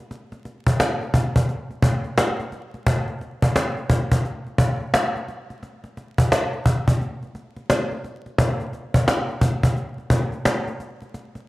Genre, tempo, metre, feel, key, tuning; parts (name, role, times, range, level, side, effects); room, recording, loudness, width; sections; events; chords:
hip hop; 87 BPM; 4/4; swing 63% on 16ths
cajon; drums; 0.1-11.4 s; -20 LUFS; equal
small room reverb; dry, gritty hardware recording, vinyl crackle; -20 LUFS; side -19 dB against mid
0.0-11.5 A section